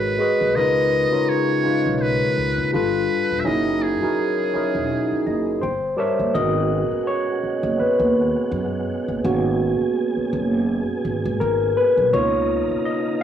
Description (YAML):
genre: R&B, neo-soul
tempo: 83 BPM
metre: 4/4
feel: swing 56% on 16ths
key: G# minor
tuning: A4 = 440 Hz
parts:
  - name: trumpet with metal mute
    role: melody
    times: 0.0-5.6 s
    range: G#4 to E5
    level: -25 LUFS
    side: right 3 dB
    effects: cassette tape, tape echo
  - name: barky tine electric piano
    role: accompaniment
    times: 0.0-13.2 s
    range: C#3 to A5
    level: -20 LUFS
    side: left 1 dB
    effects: overdrive, phaser
  - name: upright bass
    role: bass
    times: 0.0-12.7 s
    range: E1 to C#3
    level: -26 LUFS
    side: right 1 dB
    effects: none
  - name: tonewheel organ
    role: sustained chords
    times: 6.3-13.2 s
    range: B2 to A#4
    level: -29 LUFS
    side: right 6 dB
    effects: slow rotary speaker, chorus vibrato
room: light reverb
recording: home recording on cassette, studio reverb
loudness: -18 LUFS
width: side -9 dB against mid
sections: 0.0-6.3 A section; 6.3-13.2 B section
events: tine electric piano fill 4.9-6.3; tine electric piano solo 6.3-13.2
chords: 0.0 G#m11; 0.6 C#13; 2.7 G9; 3.4 F#13; 5.6 Gdim7; 6.3 G#m11; 12.1 C#13